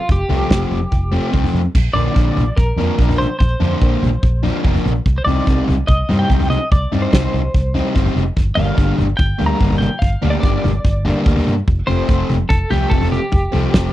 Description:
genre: indie rock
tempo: 145 BPM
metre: 4/4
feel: straight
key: unclear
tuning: A4 = 442 Hz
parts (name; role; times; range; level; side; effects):
- twelve-string electric guitar; melody; 0.0-13.9 s; F4 to Bb5; -23 LUFS; equal; tremolo, slapback echo
- vintage muted fingered electric bass; bass; 0.1-13.9 s; F1 to G2; -19 LUFS; equal; none
- loose indie drum kit; drums; 0.1-13.8 s; crash cymbal, kick drum, snare drum, toms; -17 LUFS; equal; none
- fuzz guitar; riff; 0.3-13.9 s; C3 to Eb4; -19 LUFS; left 1 dB; distortion
room: small room ambience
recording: dry, close 1970s-style studio recording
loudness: -14 LUFS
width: side -14 dB against mid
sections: 0.0-1.7 A section; 1.7-13.9 A section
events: none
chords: 0.0 Fadd9; 1.7 Bbadd9; 5.1 Cmadd9; 8.4 Gm; 11.7 F

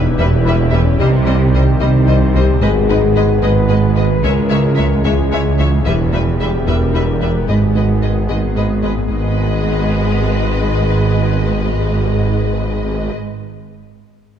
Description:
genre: cinematic, hybrid orchestral and electronic film score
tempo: 74 BPM (dotted quarters)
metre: 6/8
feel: straight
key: G# harmonic minor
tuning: A4 = 440 Hz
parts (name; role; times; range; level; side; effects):
- clear trombone section; sustained chords; 0.0-13.1 s; D#3 to B3; -28 LUFS; right 3 dB; none
- evolving wavetable pad; sustained chords; 0.0-13.1 s; Eb3 to C#5; -25 LUFS; left 2 dB; chorus, built-in reverb
- mellow French horn section; sustained chords; 0.0-13.1 s; C#4 to B4; -22 LUFS; left 8 dB; none
- round analog bass; riff; 0.0-9.0 s; C2 to G#3; -22 LUFS; right 1 dB; none
- dark symphonic double bass section; bass; 0.0-13.1 s; E1 to C#2; -20 LUFS; right 4 dB; none
- mellow tuba; bass; 0.0-13.1 s; E1 to C#2; -22 LUFS; right 2 dB; none
- snarling distorted saw bass; bass; 0.0-13.1 s; E1 to C#2; -20 LUFS; left 1 dB; distortion
- warm symphonic cello section; bass; 0.0-13.1 s; C#2 to C3; -20 LUFS; right 2 dB; none
- warm symphonic violin section; melody; 0.2-13.1 s; Eb5 to E5; -26 LUFS; left 5 dB; none
- rich studio violin section; second line; 0.2-13.1 s; B4 to C#5; -28 LUFS; left 3 dB; none
- warm symphonic viola section; accompaniment; 0.2-13.1 s; G3 to G#3; -26 LUFS; equal; none
- tight sequenced synth; arpeggios; 0.2-9.0 s; C3 to G#4; -29 LUFS; left 2 dB; none
room: moderate concert hall reverb, RT60 2.2 s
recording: dark, warm production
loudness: -12 LUFS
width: side -9 dB against mid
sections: 0.0-9.1 A section; 9.1-12.3 B section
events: none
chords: 0.0 Em; 1.0 Cm; 2.6 G#m; 4.2 C#m; 5.9 Em; 7.5 G#m

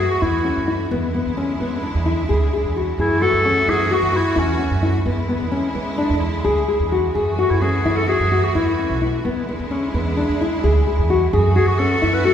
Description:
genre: contemporary instrumental, chamber music in an uneven meter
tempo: 260 BPM (eighths)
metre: 9/8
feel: straight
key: F# minor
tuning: A4 = 440 Hz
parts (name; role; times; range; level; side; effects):
- bright clarinet; melody; 0.0-12.3 s; C#4 to B4; -20 LUFS; equal; none
- rich symphonic string section; sustained chords; 0.0-12.3 s; D3 to F#4; -27 LUFS; equal; none
- nylon-string guitar; arpeggios; 0.0-12.3 s; B3 to G#4; -20 LUFS; left 3 dB; none
- upright bass; bass; 0.0-12.3 s; B1 to F#2; -22 LUFS; right 2 dB; none
room: wet scoring stage reverb, RT60 1.7 s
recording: recorded in a church or concert hall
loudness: -17 LUFS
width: side -9 dB against mid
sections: 0.0-12.3 A section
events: none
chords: 0.0 F#m7; 0.9 E7; 3.0 F#m7; 5.1 E7; 7.2 F#m7; 9.3 E7; 11.3 F#m7

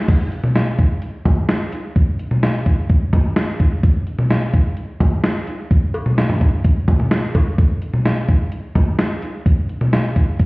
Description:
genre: pop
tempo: 128 BPM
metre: 4/4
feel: straight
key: none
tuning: none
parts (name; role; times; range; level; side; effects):
- gated 80s digital drum machine; drums; 0.1-10.5 s; cowbell, crash cymbal, hi-hat, kick drum, snare drum, toms; -15 LUFS; equal; gated reverb, gated reverb snare
room: moderate plate reverb, RT60 1.7 s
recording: heard muffled through a wall, stone room reverb, EQ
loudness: -15 LUFS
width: side -25 dB against mid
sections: 0.1-10.5 A section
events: none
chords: none

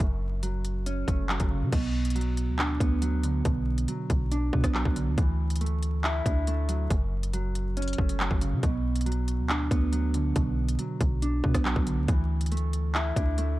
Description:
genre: hip hop, drill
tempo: 139 BPM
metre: 4/4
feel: half-time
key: B minor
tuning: A4 = 439 Hz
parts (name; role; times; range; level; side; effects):
- mellow electric guitar; accompaniment; 0.0-13.6 s; F#2 to E4; -30 LUFS; right 2 dB; low-pass filter
- long sustained 808-style bass; bass; 0.0-13.6 s; F#1 to C#3; -28 LUFS; equal; none
- drill drum kit; drums; 0.0-13.5 s; crash cymbal, handclaps, hi-hat, kick drum, rim click; -28 LUFS; equal; none
room: little or no reverb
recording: dark, warm production, vinyl crackle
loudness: -25 LUFS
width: side -17 dB against mid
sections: 0.0-1.7 A section; 1.7-13.6 B section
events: none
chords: 0.0 F#m; 1.7 Bm; 5.2 Dadd9; 6.9 F#m; 8.6 Bm; 12.1 Dsus2

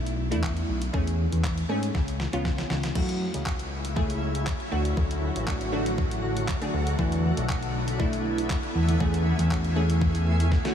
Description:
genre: dance-pop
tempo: 119 BPM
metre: 4/4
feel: straight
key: F# minor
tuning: A4 = 439 Hz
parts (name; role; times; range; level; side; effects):
- glassy wavetable pluck; accompaniment; 0.0-10.7 s; A3 to G#4; -31 LUFS; right 1 dB; chorus, sidechain pumping
- fat analog bass; bass; 0.0-10.5 s; A1 to G#2; -27 LUFS; left 1 dB; sidechain pumping
- clean 12-bit digital drum machine; drums; 0.1-10.7 s; crash cymbal, handclaps, hi-hat, kick drum, snare drum; -30 LUFS; left 1 dB; none
- shimmering ambient pad; sustained chords; 3.7-10.7 s; C#3 to G#4; -31 LUFS; equal; chorus, built-in reverb, sidechain pumping
room: light reverb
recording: none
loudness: -24 LUFS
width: side -9 dB against mid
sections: 0.0-3.0 A section; 3.0-10.7 B section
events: drum fill 1.9-3.0, 10.5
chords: 0.0 E7sus4; 0.9 Amaj7/E; 1.9 C#7; 3.0 F#m7; 4.7 D; 7.0 E7sus4; 9.0 Amaj7/E

